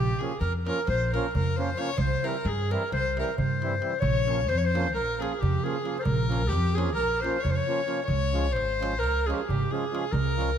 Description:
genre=balkan folk, Balkan wedding band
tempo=265 BPM (eighths)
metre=9/8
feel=straight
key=unclear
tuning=A4 = 440 Hz
part: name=mellow clarinet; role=melody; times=0.0-10.6 s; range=G4 to Db5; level=-29 LUFS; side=equal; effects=tape echo
part: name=rich violin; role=second line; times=0.0-10.6 s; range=G4 to Db5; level=-34 LUFS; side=left 5 dB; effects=none
part: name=upright bass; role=bass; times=0.0-10.6 s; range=Ab1 to G2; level=-28 LUFS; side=left 1 dB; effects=none
part: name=accordion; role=accompaniment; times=0.2-10.5 s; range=E3 to F4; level=-34 LUFS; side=right 4 dB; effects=none
part: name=darbuka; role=percussion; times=0.2-10.6 s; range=none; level=-32 LUFS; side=right 3 dB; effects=none
room=light reverb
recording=none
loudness=-24 LUFS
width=side -8 dB against mid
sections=0.0-4.0 A section; 4.0-10.6 B section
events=none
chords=0.0 Bbm; 2.0 C; 4.0 Bbm; 8.1 Db

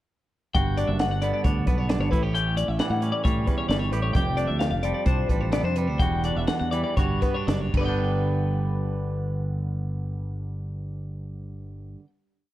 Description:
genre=math rock and midwest emo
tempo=113-134 BPM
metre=4/4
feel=straight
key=G lydian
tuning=A4 = 440 Hz
part: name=twelve-string electric guitar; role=arpeggios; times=0.5-12.1 s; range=B4 to G5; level=-29 LUFS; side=left 5 dB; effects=none
part: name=compact cocktail drum kit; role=drums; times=0.5-7.9 s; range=crash cymbal, hi-hat, kick drum, snare drum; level=-26 LUFS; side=equal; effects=none
part: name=twangy electric guitar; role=accompaniment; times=0.6-12.1 s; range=E2 to G4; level=-30 LUFS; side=right 5 dB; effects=none
part: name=fingered electric bass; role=bass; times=0.6-11.9 s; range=E1 to A2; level=-27 LUFS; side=equal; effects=none
room=small room ambience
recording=dark, warm production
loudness=-22 LUFS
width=side -14 dB against mid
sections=0.6-8.0 A section; 8.0-12.2 final hit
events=slowing down 4.2-8.0; drum fill 7.7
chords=0.6 Gmaj7; 2.1 A7; 4.2 F69; 6.0 Em9; 7.0 Gmaj7; 7.7 G

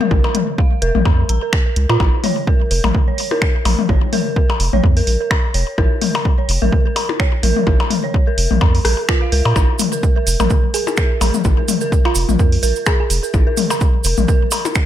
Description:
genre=minimal techno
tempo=127 BPM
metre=4/4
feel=swing 56% on 16ths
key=Bb minor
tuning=A4 = 439 Hz
part: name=dark detuned synth bell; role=riff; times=0.0-14.6 s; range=F4 to Bb5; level=-23 LUFS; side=right 3 dB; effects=chorus, phaser, sidechain pumping, ping-pong delay
part: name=minimal click drum kit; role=percussion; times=0.0-14.7 s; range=percussion blips, rim click, toms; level=-20 LUFS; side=left 6 dB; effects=overdrive, studio reverb, ping-pong delay
part: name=round analog bass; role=bass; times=0.1-14.3 s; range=F1 to Bb2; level=-17 LUFS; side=equal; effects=sidechain pumping
part: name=electronic kick drum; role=drums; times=0.1-14.9 s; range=none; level=-16 LUFS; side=equal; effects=studio reverb
part: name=punchy analog drum machine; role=drums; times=0.3-14.9 s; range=finger snaps, hi-hat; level=-23 LUFS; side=right 1 dB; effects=studio reverb
part: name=cabasa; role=percussion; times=9.6-14.9 s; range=none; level=-25 LUFS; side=right 10 dB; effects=none
part: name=thumb-piano-like synth pluck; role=melody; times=10.7-13.1 s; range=F4 to Ab4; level=-26 LUFS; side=right 6 dB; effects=chorus, ping-pong delay
room=digital ambience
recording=none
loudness=-14 LUFS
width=side -11 dB against mid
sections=0.0-14.9 A section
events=none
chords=0.0 Bb5

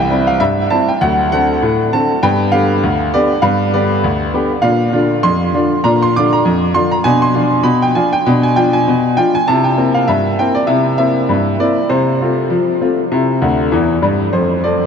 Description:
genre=ragtime piano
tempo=99 BPM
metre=2/4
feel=swing 56% on 16ths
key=unclear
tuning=A4 = 444 Hz
part: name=bright grand piano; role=solo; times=0.0-14.9 s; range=C2 to D6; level=-12 LUFS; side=equal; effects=none
room=wet huge ambient reverb, RT60 7.0 s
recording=dreamy mix soaked in reverb, cassette tape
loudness=-12 LUFS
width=side -6 dB against mid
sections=0.0-14.3 A section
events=grand piano fill 13.4-14.3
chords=0.0 C; 1.0 D7; 2.2 G7; 4.6 Bb; 7.0 Bdim; 9.5 C7; 11.9 F/C; 13.1 C; 14.3 F

